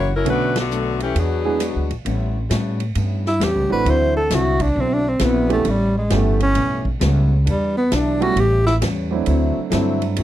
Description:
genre	jazz, big band swing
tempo	133 BPM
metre	4/4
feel	swing 66% on 8ths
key	A mixolydian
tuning	A4 = 440 Hz
part	bright saxophone section	melody	0.0-1.9 s	D3 to C#5	-22 LUFS	left 4 dB	none
part	fingerpicked steel-string acoustic guitar	accompaniment	0.0-10.2 s	F#2 to G4	-25 LUFS	left 6 dB	none
part	upright bass	bass	0.0-10.2 s	F#1 to A2	-20 LUFS	right 1 dB	none
part	warm concert grand piano	accompaniment	0.2-10.2 s	D3 to G#4	-23 LUFS	right 8 dB	none
part	swinging big-band drum kit	drums	0.3-10.2 s	hi-hat, kick drum, ride cymbal, rim click, snare drum	-29 LUFS	equal	none
part	warm tenor saxophone	melody	3.3-8.8 s	G3 to C5	-19 LUFS	right 1 dB	slapback echo
room	light reverb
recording	dry, close 1970s-style studio recording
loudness	-16 LUFS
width	side -13 dB against mid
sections	0.0-2.1 A section; 2.1-10.2 B section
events	band accent 0.5; tenor saxophone solo 2.1-10.2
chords	0.3 Bm7; 1.2 E9; 2.1 A9; 3.9 D9; 5.7 A9; 7.5 Em7; 8.4 A9; 9.3 D9

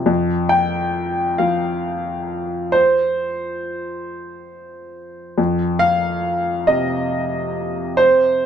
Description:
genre	neoclassical minimalist piano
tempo	46 BPM (dotted quarters)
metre	6/8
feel	rubato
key	unclear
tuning	A4 = 440 Hz
part	clear upright piano	solo	0.0-8.5 s	F2 to G5	-17 LUFS	equal	none
room	moderate small room ambience, RT60 0.5 s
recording	none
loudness	-17 LUFS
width	side -8 dB against mid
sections	0.1-8.5 A section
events	none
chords	0.1 N.C.; 5.4 F5

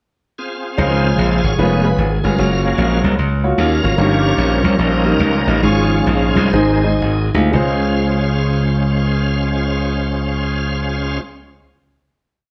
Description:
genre	uptempo gospel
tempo	112-150 BPM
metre	4/4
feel	swing 64% on 8ths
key	Db major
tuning	A4 = 440 Hz
part	bright tonewheel organ	sustained chords	0.4-11.2 s	Eb3 to F5	-22 LUFS	equal	slow rotary speaker, chorus vibrato
part	warm concert grand piano	accompaniment	0.8-11.2 s	Db2 to Eb5	-22 LUFS	equal	none
part	glassy slap bass	bass	0.8-11.2 s	F1 to Eb2	-19 LUFS	equal	none
room	moderate large studio reverb, RT60 1.1 s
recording	band playing live in one room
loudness	-16 LUFS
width	mono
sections	0.0-0.8 pickup bar; 0.8-7.5 breakdown; 7.5-11.8 final chord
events	tonewheel organ solo 0.8-7.5; slowing down 4.0-7.5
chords	0.0 Fm/C; 0.8 Dbmaj7; 1.6 Db7/F; 2.4 Gbmaj7; 4.0 Eb7/G; 5.6 Db/Ab; 6.5 Ab; 7.5 Dbmaj7

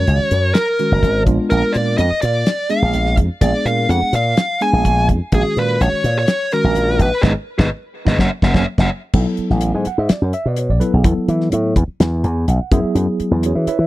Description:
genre	electric jazz fusion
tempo	126 BPM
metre	4/4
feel	straight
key	B dorian from 9.1 s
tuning	A4 = 440 Hz
part	smooth overdriven lead guitar	melody	0.0-8.9 s	G#4 to G#5	-19 LUFS	equal	none
part	tine electric piano	accompaniment	0.0-13.9 s	D#3 to G#5	-21 LUFS	right 1 dB	overdrive, medium stereo tremolo
part	slap bass with an envelope filter	bass	0.0-13.9 s	F#1 to E3	-17 LUFS	equal	none
part	damped 70s drum kit	drums	0.1-13.8 s	crash cymbal, hi-hat, kick drum, snare drum	-17 LUFS	equal	none
room	little or no reverb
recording	dry, close 1970s-style studio recording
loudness	-14 LUFS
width	side -17 dB against mid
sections	0.0-9.1 A section; 9.1-13.9 B section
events	band accent 7.2-9.1; drum fill 8.9; tine electric piano fill 12.0-13.0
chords	0.0 F#; 1.3 A#7b9; 5.3 D#m7/A#; 7.2 G#m; 8.2 F#7; 9.1 B7sus4; 11.1 Esus4; 12.7 F#9sus4

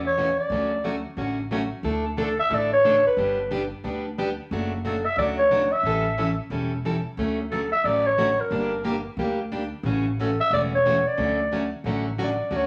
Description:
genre	acoustic string swing (jazz manouche)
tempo	180 BPM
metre	4/4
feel	swing 60% on 8ths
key	D major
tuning	A4 = 440 Hz
part	picked plugged-in steel-string acoustic guitar	accompaniment	0.0-12.7 s	C#3 to A4	-30 LUFS	equal	none
part	upright bass	bass	0.0-12.7 s	E1 to E2	-34 LUFS	equal	none
part	growling clarinet	melody	0.1-12.7 s	A4 to E5	-24 LUFS	equal	none
room	moderate large studio reverb, RT60 0.8 s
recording	none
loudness	-24 LUFS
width	mono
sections	0.0-1.8 A section; 1.8-12.5 A section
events	none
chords	0.0 A6; 0.5 Dmaj7; 1.8 Dsus2; 3.2 G; 4.5 Dmaj7/F#; 5.8 A7; 7.2 Dmaj7; 8.5 Gm; 9.8 A6; 11.2 Dmaj7

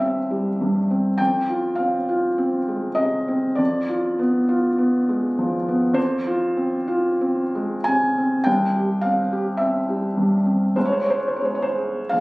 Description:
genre	classical, romantic nocturne for solo piano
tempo	41-53 BPM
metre	4/4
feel	rubato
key	F minor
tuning	A4 = 441 Hz
part	felt-muted upright piano	solo	0.0-12.2 s	Bb1 to Ab5	-19 LUFS	equal	none
room	light reverb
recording	recorded on a phone in the room, club reverb, compression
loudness	-19 LUFS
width	side -23 dB against mid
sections	0.0-12.2 A section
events	none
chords	0.0 C; 1.2 Fm; 3.6 Fdim; 6.0 Fm; 8.5 C; 10.8 Db5

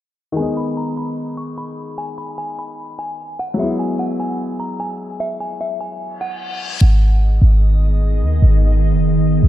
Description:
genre	hip hop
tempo	149 BPM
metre	4/4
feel	half-time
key	G# minor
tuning	A4 = 440 Hz
part	clear baby grand piano	accompaniment	0.3-6.8 s	D#3 to E4	-24 LUFS	left 2 dB	none
part	delicate synth tine bell	melody	0.4-6.8 s	E5 to C#6	-27 LUFS	equal	chorus, diffuse ambient delay
part	reverse cymbal	sound effects	6.2-6.8 s	none	-29 LUFS	left 6 dB	none
part	glassy FM pad	sustained chords	7.6-9.5 s	D#3 to D#5	-19 LUFS	right 1 dB	ensemble chorus, built-in reverb
part	clean 808-style bass	bass	6.8-9.5 s	F#1 to D#2	-12 LUFS	equal	none
room	digital ambience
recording	low-pass filter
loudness	-16 LUFS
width	side -13 dB against mid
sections	0.4-6.8 A section; 6.8-9.5 B section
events	filter sweep 0.4-6.8; reverse cymbal 6.2-6.8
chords	0.4 G#m; 3.6 Eadd9; 6.8 G#m

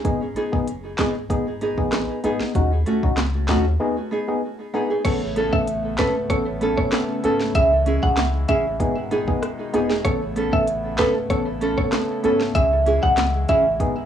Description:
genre	dancehall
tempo	96 BPM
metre	4/4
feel	straight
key	unclear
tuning	A4 = 440 Hz
part	percussive organ stab	accompaniment	0.0-14.0 s	B3 to A4	-24 LUFS	left 3 dB	chorus, cassette tape
part	afro-pop drum kit	drums	0.0-14.0 s	crash cymbal, handclaps, hi-hat, kick drum, rim click, snare drum	-24 LUFS	equal	none
part	warm sub bass	bass	0.1-14.1 s	E1 to D#2	-26 LUFS	left 1 dB	none
part	nylon-string guitar	arpeggios	0.4-13.7 s	A3 to A4	-26 LUFS	right 4 dB	cassette tape, tape echo
part	mallet-like synth pluck	melody	5.0-13.8 s	B4 to F#5	-22 LUFS	right 1 dB	chorus, cassette tape, tape echo
part	pipe organ, foundations	sustained chords	5.0-14.1 s	B2 to E4	-32 LUFS	left 1 dB	sidechain pumping, cassette tape
room	moderate studio reverb, RT60 0.6 s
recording	home recording on cassette, small room ambience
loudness	-19 LUFS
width	side -9 dB against mid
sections	0.0-5.0 A section; 5.0-14.1 B section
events	break 3.8-5.0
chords	0.1 G#m; 2.5 D#m7b5; 3.8 G#m; 5.0 Aadd9; 7.5 C#m; 8.8 G#m; 10.1 Aadd9; 12.6 C#m

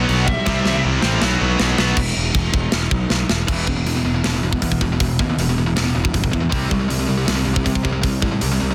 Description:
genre	heavy metal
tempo	158 BPM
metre	4/4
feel	straight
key	E minor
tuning	A4 = 441 Hz
part	bluesy overdriven lead guitar	melody	0.0-0.8 s	E5 to F#5	-29 LUFS	equal	distortion, tape echo
part	high-gain lead guitar	second line	0.0-0.8 s	G3 to B3	-30 LUFS	equal	none
part	high-gain distorted guitar	riff	0.0-2.0 s	B2 to C4	-25 LUFS	equal	distortion
part	tight distorted guitar	riff	0.0-8.7 s	E2 to C4	-24 LUFS	equal	distortion
part	fuzz picked electric bass	bass	0.0-8.7 s	E1 to C3	-23 LUFS	equal	overdrive
part	tight metal drum kit	drums	0.1-8.5 s	crash cymbal, hi-hat, kick drum, snare drum	-24 LUFS	equal	none
room	studio reverb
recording	dense, heavily limited modern master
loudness	-19 LUFS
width	mono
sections	0.0-2.0 A section; 2.0-3.5 B section; 3.5-8.7 C section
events	drum fill 0.5-2.0, 3.1-3.5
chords	0.5 C; 1.2 B5; 2.0 E5; 6.5 C5

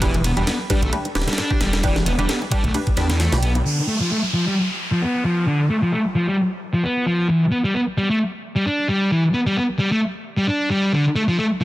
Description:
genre	breakbeat, breaks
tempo	132 BPM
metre	4/4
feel	swing 55% on 16ths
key	D dorian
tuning	A4 = 439 Hz
part	thick fuzz guitar	riff	0.0-11.6 s	D3 to D4	-19 LUFS	equal	distortion, low-pass filter
part	filtered dub chord stab	stabs	0.0-3.4 s	D4 to B4	-27 LUFS	right 1 dB	phaser, lush chorus, dub echo
part	phased detuned saw bass	bass	0.0-3.6 s	D1 to E2	-21 LUFS	equal	phaser, tube saturation
part	breakbeat sampler-style drum kit	drums	0.0-3.5 s	kick drum, ride cymbal, snare drum	-23 LUFS	equal	none
part	electronic hi-hat	drums	0.0-3.6 s	none	-32 LUFS	equal	none
part	bongos and congas	percussion	0.1-3.6 s	none	-32 LUFS	equal	none
part	downlifter	sound effects	3.7-7.3 s	none	-28 LUFS	equal	none
room	light reverb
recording	dense, heavily limited modern master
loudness	-18 LUFS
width	side -16 dB against mid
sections	0.0-3.7 A section; 3.7-11.6 B section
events	filter sweep on distorted electric guitar 3.7-11.6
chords	0.0 Em7; 3.7 Dm6 (rootless); 7.3 Em7 (rootless); 10.9 Dm

